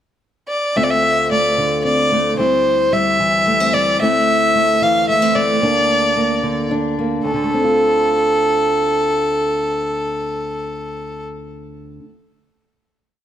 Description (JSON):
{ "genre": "indie folk with a building arrangement", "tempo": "111 BPM", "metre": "3/4", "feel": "straight", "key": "D minor", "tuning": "A4 = 439 Hz", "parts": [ { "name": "warm fiddle", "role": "melody", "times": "0.5-11.2 s", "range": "A4 to F5", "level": "-16 LUFS", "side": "equal", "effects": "digital delay" }, { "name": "fingerpicked steel-string acoustic guitar", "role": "accompaniment", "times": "0.8-12.2 s", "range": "D2 to F4", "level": "-20 LUFS", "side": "left 1 dB", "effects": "none" } ], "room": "light reverb", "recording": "none", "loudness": "-14 LUFS", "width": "side -10 dB against mid", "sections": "0.0-0.8 pickup bar; 0.8-7.2 verse; 7.2-10.5 final chord", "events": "none", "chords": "0.0 N.C.; 0.8 Dm7; 2.4 C/D; 4.0 Am/D; 5.6 Bb/D; 7.2 Dm7", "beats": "0.21 | 0.76 1.30 1.84 | 2.38 2.93 3.47 | 4.01 4.55 5.09 | 5.63 6.17 6.71 | 7.25 7.79 8.32 | 8.87 9.41 9.95" }